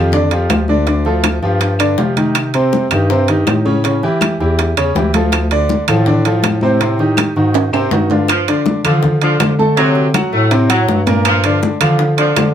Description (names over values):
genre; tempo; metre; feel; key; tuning
latin, salsa; 162 BPM; 4/4; straight; G minor; A4 = 440 Hz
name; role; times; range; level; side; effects
clear grand piano; accompaniment; 0.0-12.5 s; Bb2 to A5; -16 LUFS; equal; none
dark bass clarinet; bass; 0.0-12.5 s; D2 to D3; -16 LUFS; equal; none
bongos; percussion; 0.1-12.5 s; none; -23 LUFS; left 6 dB; none
congas; percussion; 0.1-12.5 s; none; -20 LUFS; left 2 dB; none
timbales; percussion; 0.3-12.5 s; none; -20 LUFS; right 9 dB; none
claves; percussion; 0.5-12.5 s; none; -24 LUFS; left 3 dB; none
mellow saxophone section; second line; 8.3-12.5 s; D3 to A3; -18 LUFS; equal; none
room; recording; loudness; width
light reverb; none; -11 LUFS; side -9 dB against mid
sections
0.0-8.3 A section; 8.3-12.5 B section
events
drum fill 7.5-8.3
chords
0.0 Bb6 (rootless); 0.9 Dm; 1.6 G5; 2.4 Cm; 3.8 A7; 5.3 Dm7; 6.8 Am7b5; 7.5 Ab6; 8.3 G5; 9.8 D7; 11.3 Gm7